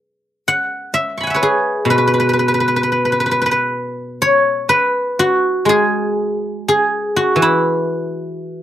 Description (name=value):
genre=chinese traditional, Chinese solo plucked strings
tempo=63 BPM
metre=4/4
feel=rubato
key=unclear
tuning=A4 = 439 Hz
part: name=guzheng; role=solo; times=0.0-8.6 s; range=B2 to C#6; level=-14 LUFS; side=equal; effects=none
room=little or no reverb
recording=recorded outdoors, with no room sound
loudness=-14 LUFS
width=side -11 dB against mid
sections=0.0-8.6 A section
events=none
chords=none